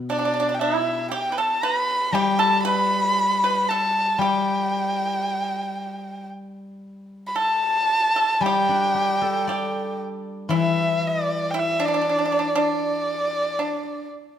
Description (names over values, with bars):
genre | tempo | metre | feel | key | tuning
chinese traditional, Chinese chamber ensemble | 58 BPM | 4/4 | rubato | G gong mode | A4 = 442 Hz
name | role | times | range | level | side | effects
steel-string zither | accompaniment | 0.0-13.6 s | B2 to D5 | -27 LUFS | left 4 dB | none
warm erhu | melody | 0.1-14.1 s | D5 to B5 | -22 LUFS | equal | none
pipa | second line | 0.1-14.1 s | D4 to B4 | -26 LUFS | right 2 dB | none
room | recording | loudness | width
moderate recital hall reverb, RT60 1.6 s | none | -20 LUFS | side -9 dB against mid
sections
0.0-8.4 A section; 8.4-14.4 B section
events
none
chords
none